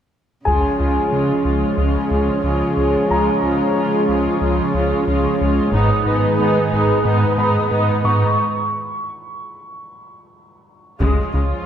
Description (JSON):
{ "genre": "cinematic, hybrid orchestral and electronic film score", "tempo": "91 BPM", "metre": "4/4", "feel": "straight", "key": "unclear", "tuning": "A4 = 443 Hz", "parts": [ { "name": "warm symphonic viola section", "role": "accompaniment", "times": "0.5-11.7 s", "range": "G#3 to E#4", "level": "-21 LUFS", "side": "equal", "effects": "none" }, { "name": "warm analog pad", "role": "sustained chords", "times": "0.5-11.7 s", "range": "D#3 to C#5", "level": "-21 LUFS", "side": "equal", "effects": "chorus" }, { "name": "smooth synth bass", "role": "riff", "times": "0.5-11.5 s", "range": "C#2 to G#3", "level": "-21 LUFS", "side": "equal", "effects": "none" }, { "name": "dark symphonic cello section", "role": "bass", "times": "0.5-11.4 s", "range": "G#2 to C#3", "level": "-24 LUFS", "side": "right 2 dB", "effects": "none" }, { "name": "taiko ensemble", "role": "drums", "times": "0.5-1.7, 5.7-7.0, 11.0-11.7 s", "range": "none", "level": "-29 LUFS", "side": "left 1 dB", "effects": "none" }, { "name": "clear grand piano", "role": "texture", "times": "0.5-11.0 s", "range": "G#4 to C#6", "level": "-24 LUFS", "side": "left 1 dB", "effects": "tape echo" } ], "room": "wet scoring stage reverb, RT60 1.6 s", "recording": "heard from further back in the room", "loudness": "-15 LUFS", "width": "side -9 dB against mid", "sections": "0.5-11.0 A section", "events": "break 8.4-11.0", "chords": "0.5 C#; 5.7 G#m; 11.0 C#", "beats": "| 0.46 1.11 1.77 2.43 | 3.09 3.75 4.41 5.07 | 5.73 6.39 7.05 7.71 | 8.37 9.03 9.69 10.35 | 11.01" }